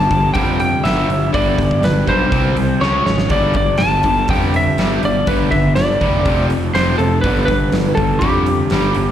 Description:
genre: hard rock.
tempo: 122 BPM.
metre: 4/4.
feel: straight.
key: unclear.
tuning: A4 = 440 Hz.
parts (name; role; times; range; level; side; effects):
lightly driven lead guitar; melody; 0.0-9.1 s; G4 to A5; -18 LUFS; equal; slapback echo.
crunchy overdriven guitar; riff; 0.0-9.1 s; F2 to C#4; -23 LUFS; right 7 dB; slapback echo.
overdriven semi-hollow guitar; riff; 0.0-9.1 s; F2 to C#4; -23 LUFS; left 10 dB; slapback echo.
raw garage guitar; riff; 0.0-9.1 s; F2 to C#4; -24 LUFS; equal; overdrive, slapback echo.
fuzz picked electric bass; bass; 0.0-9.1 s; F1 to F2; -19 LUFS; equal; overdrive.
huge arena drum kit; drums; 0.1-9.1 s; hi-hat, kick drum, snare drum; -21 LUFS; equal; none.
room: little or no reverb.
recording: live gig heard through the venue's PA, recital hall reverb.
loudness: -13 LUFS.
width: side -10 dB against mid.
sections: 0.0-9.1 A section.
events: drum fill 2.8-3.3.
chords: 0.0 G5; 2.3 C5; 2.8 C#5; 3.3 G5; 6.3 F5; 7.2 G.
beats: 0.36 0.85 | 1.35 1.84 2.33 2.82 | 3.31 3.81 4.30 4.79 | 5.28 5.77 6.26 6.75 | 7.24 7.73 8.22 8.71.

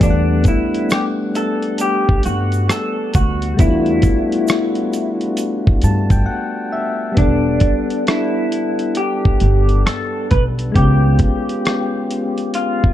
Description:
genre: lo-fi hip hop.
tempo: 67 BPM.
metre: 4/4.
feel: swing 62% on 16ths.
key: E minor.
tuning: A4 = 439 Hz.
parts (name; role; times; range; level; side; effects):
electric guitar through a small old amp; melody; 0.0-12.9 s; D4 to B4; -21 LUFS; equal; lush chorus, low-pass filter.
soft electric-piano-like synth keys; accompaniment; 0.0-12.9 s; G3 to A5; -20 LUFS; left 2 dB; chorus, tremolo, low-pass filter.
upright bass; bass; 0.0-11.2 s; E1 to G2; -16 LUFS; equal; none.
dusty soul sampler-style drum kit; drums; 0.0-12.9 s; hi-hat, kick drum, rim click; -16 LUFS; equal; overdrive.
tube shaker; percussion; 0.0-6.3 s; none; -36 LUFS; right 11 dB; none.
room: light reverb, digital ambience.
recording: dark, warm production.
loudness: -14 LUFS.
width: side -12 dB against mid.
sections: 0.0-7.2 A section; 7.2-12.9 A section.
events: synth keys fill 5.4-7.2; break 6.3-7.2.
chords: 0.0 Em11; 10.8 C#7#11.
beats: | 0.01 0.91 1.80 2.70 | 3.59 4.49 5.38 6.28 | 7.17 8.07 8.96 9.86 | 10.76 11.65 12.55.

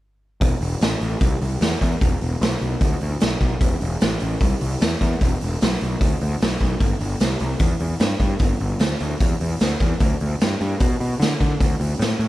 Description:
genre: blues rock power trio and southern rock.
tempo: 150 BPM.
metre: 4/4.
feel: straight.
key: E minor.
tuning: A4 = 440 Hz.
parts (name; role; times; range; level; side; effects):
fuzz picked electric bass; bass; 0.4-12.3 s; E1 to D3; -22 LUFS; equal; overdrive.
raw garage drum kit; drums; 0.4-12.3 s; hi-hat, kick drum, snare drum; -20 LUFS; equal; none.
room: little or no reverb.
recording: faint mains hum.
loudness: -18 LUFS.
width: side -16 dB against mid.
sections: 0.4-12.3 A section.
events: none.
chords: none.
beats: | 0.41 0.81 1.22 1.61 | 2.02 2.42 2.81 3.21 | 3.62 4.01 4.42 4.82 | 5.21 5.61 6.01 6.41 | 6.81 7.21 7.61 8.01 | 8.41 8.81 9.21 9.61 | 10.01 10.41 10.80 11.20 | 11.60 12.00.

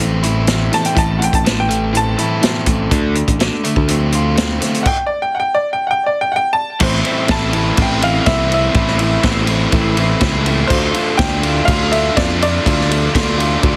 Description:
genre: indie rock.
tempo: 123 BPM.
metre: 4/4.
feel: straight.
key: A minor.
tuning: A4 = 440 Hz.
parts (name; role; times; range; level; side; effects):
bright upright piano; melody; 0.0-13.8 s; C5 to A5; -22 LUFS; equal; tape echo.
overdriven electric guitar; riff; 0.0-13.8 s; A2 to F4; -22 LUFS; equal; none.
overdriven electric guitar; riff; 0.0-13.8 s; A2 to F4; -24 LUFS; equal; lush chorus.
picked electric bass; bass; 0.0-13.8 s; A1 to F2; -21 LUFS; equal; none.
vintage drum kit; drums; 0.2-13.7 s; crash cymbal, hi-hat, kick drum, ride cymbal, snare drum; -20 LUFS; equal; none.
lush unison pad; sustained chords; 6.8-13.8 s; A4 to D6; -34 LUFS; equal; none.
room: light reverb.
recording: heavily compressed radio sound, multiband compression.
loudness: -15 LUFS.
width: mono.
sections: 0.0-6.8 A section; 6.8-13.8 B section.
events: upright piano solo 0.0-6.8.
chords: 0.0 Am; 2.9 Dm7; 6.8 Am; 10.7 Dm7.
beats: 0.00 0.48 | 0.97 1.45 1.94 2.42 | 2.91 3.40 3.88 4.37 | 4.85 5.34 5.83 6.32 | 6.80 7.29 7.78 8.27 | 8.75 9.24 9.73 10.21 | 10.70 11.19 11.68 12.16 | 12.65 13.14 13.62.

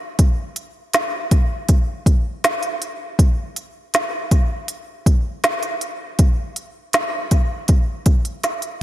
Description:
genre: pop.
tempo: 80 BPM.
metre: 4/4.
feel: straight.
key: none.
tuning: none.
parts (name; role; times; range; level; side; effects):
organic electronic drum kit; drums; 0.2-8.8 s; hi-hat, kick drum, snare drum; -17 LUFS; equal; none.
room: light reverb.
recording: bright 1980s-style digital production.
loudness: -17 LUFS.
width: side -14 dB against mid.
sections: 0.0-8.8 A section.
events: drum fill 8.4-8.8.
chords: none.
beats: | 0.19 0.94 1.69 2.44 | 3.19 3.94 4.69 5.44 | 6.19 6.94 7.69 8.44.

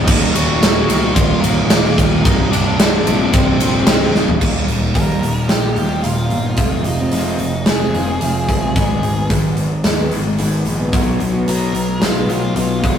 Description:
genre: quiet-loud alternative rock.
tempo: 110 BPM.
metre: 4/4.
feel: straight.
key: unclear.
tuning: A4 = 440 Hz.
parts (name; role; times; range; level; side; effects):
octave-fuzz lead guitar; melody; 0.0-13.0 s; Bb3 to Gb5; -24 LUFS; equal; distortion.
distorted electric guitar; riff; 0.0-4.4 s; C2 to Eb3; -21 LUFS; right 3 dB; distortion.
fuzz guitar; riff; 0.0-13.0 s; C2 to B3; -21 LUFS; left 1 dB; distortion.
fuzz picked electric bass; bass; 0.0-13.0 s; C1 to Eb2; -21 LUFS; equal; overdrive.
big rock drum kit; drums; 0.1-13.0 s; crash cymbal, hi-hat, kick drum, ride cymbal, snare drum, toms; -16 LUFS; equal; none.
picked steel-string acoustic guitar; arpeggios; 4.4-13.0 s; Eb2 to Ab4; -23 LUFS; right 1 dB; none.
room: moderate stone room reverb, RT60 1.2 s.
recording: rough rehearsal-room recording.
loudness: -13 LUFS.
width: side -8 dB against mid.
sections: 0.0-4.4 A section; 4.4-13.0 B section.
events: drum fill 4.1; half time 4.4-13.0; lead electric guitar solo 4.4-13.0.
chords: 0.1 Ebm; 2.2 Cm; 4.4 Eb; 6.6 Fm; 8.8 Abm; 10.9 B.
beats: | 0.07 0.61 1.16 1.70 | 2.24 2.78 3.33 3.87 | 4.41 4.95 5.50 6.04 | 6.58 7.13 7.67 8.22 | 8.76 9.31 9.85 10.39 | 10.94 11.48 12.03 12.57.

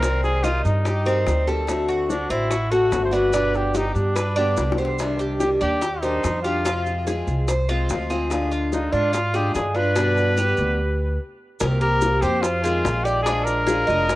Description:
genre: latin, Cuban son and guajira.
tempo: 145 BPM.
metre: 4/4.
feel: straight.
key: C minor.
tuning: A4 = 440 Hz.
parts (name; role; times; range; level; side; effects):
warm trumpet; melody; 0.0-14.2 s; D4 to C5; -24 LUFS; equal; cassette tape.
picked acoustic archtop guitar; accompaniment; 0.0-14.1 s; B2 to G4; -26 LUFS; left 2 dB; cassette tape.
Cuban tres; arpeggios; 0.0-14.2 s; C4 to Eb5; -25 LUFS; right 2 dB; cassette tape.
upright bass; bass; 0.0-14.2 s; F1 to Ab2; -24 LUFS; equal; none.
bongos; percussion; 0.0-14.2 s; none; -29 LUFS; left 4 dB; none.
maracas; percussion; 0.0-14.2 s; none; -39 LUFS; right 5 dB; none.
room: small room ambience.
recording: home recording on cassette.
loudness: -19 LUFS.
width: side -17 dB against mid.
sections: 0.0-11.6 A section; 11.6-14.2 B section.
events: drum fill 4.6-5.0; stop 10.8-11.6.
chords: 0.0 Cm; 1.7 D7; 3.3 G; 5.0 Cmadd9; 6.7 Fm; 8.3 Ddim; 10.0 G; 11.6 Cm7; 12.4 Fm7; 13.3 Bb7.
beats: | 0.03 0.45 0.86 1.27 | 1.69 2.10 2.51 2.93 | 3.34 3.75 4.17 4.58 | 5.00 5.41 5.82 6.24 | 6.65 7.07 7.48 7.89 | 8.31 8.72 9.13 9.55 | 9.96 10.37 10.79 11.20 | 11.61 12.02 12.44 12.85 | 13.26 13.67 14.09.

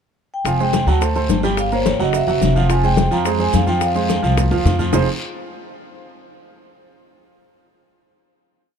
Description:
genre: Afro-Cuban jazz.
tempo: 214 BPM.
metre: 4/4.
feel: straight.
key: F minor.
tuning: A4 = 443 Hz.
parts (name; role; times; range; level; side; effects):
vibraphone with medium mallets; melody; 0.3-4.6 s; C5 to Bb5; -23 LUFS; left 1 dB; none.
upright bass; bass; 0.4-5.1 s; F1 to F2; -19 LUFS; left 1 dB; none.
guiro; percussion; 0.4-5.0 s; none; -32 LUFS; left 2 dB; none.
clear baby grand piano; accompaniment; 0.5-5.1 s; F3 to G5; -21 LUFS; right 6 dB; none.
bongos; percussion; 0.5-5.0 s; none; -27 LUFS; left 9 dB; none.
congas; percussion; 0.5-5.0 s; none; -24 LUFS; left 4 dB; none.
maracas; percussion; 0.5-5.0 s; none; -36 LUFS; right 8 dB; none.
room: light reverb.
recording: dark, warm production.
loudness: -15 LUFS.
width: side -7 dB against mid.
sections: 0.0-0.5 pickup bar; 0.5-4.9 A section; 4.9-6.0 final chord.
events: drum fill 4.1-4.9.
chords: 0.5 Fm; 1.0 D5; 1.6 Gdim; 2.1 Esus2; 2.7 Fm; 4.9 Fm7.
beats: 0.18 | 0.46 0.74 1.02 1.30 | 1.58 1.86 2.14 2.42 | 2.70 2.98 3.26 3.54 | 3.82 4.10 4.38 4.66 | 4.94.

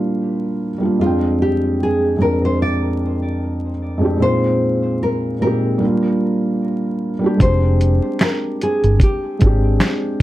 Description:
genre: lo-fi hip hop.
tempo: 75 BPM.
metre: 4/4.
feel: swing 56% on 16ths.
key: F dorian.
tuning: A4 = 440 Hz.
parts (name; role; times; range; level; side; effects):
nylon-string guitar; melody; 0.0-10.2 s; F4 to D5; -22 LUFS; left 1 dB; analog delay.
felt-muted upright piano; accompaniment; 0.0-10.2 s; F2 to G5; -18 LUFS; equal; cassette tape.
vintage muted fingered electric bass; bass; 7.4-9.8 s; F1 to Ab1; -15 LUFS; equal; none.
dusty soul sampler-style drum kit; drums; 7.4-10.2 s; finger snaps, hi-hat, kick drum, snare drum; -15 LUFS; equal; vintage 12-bit sampler grit.
finger snap; percussion; 8.2-10.0 s; none; -34 LUFS; left 4 dB; none.
room: moderate small room reverb, RT60 0.5 s.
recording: dark, warm production, vinyl crackle.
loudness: -15 LUFS.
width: side -15 dB against mid.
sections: 0.0-7.4 A section; 7.4-10.2 B section.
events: none.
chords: 0.0 Gm7; 1.0 Fm69; 4.2 Bb9sus4; 5.8 Gm7; 7.4 Fm69.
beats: 0.20 | 1.00 1.80 2.60 3.40 | 4.20 5.00 5.80 6.60 | 7.40 8.20 9.00 9.80.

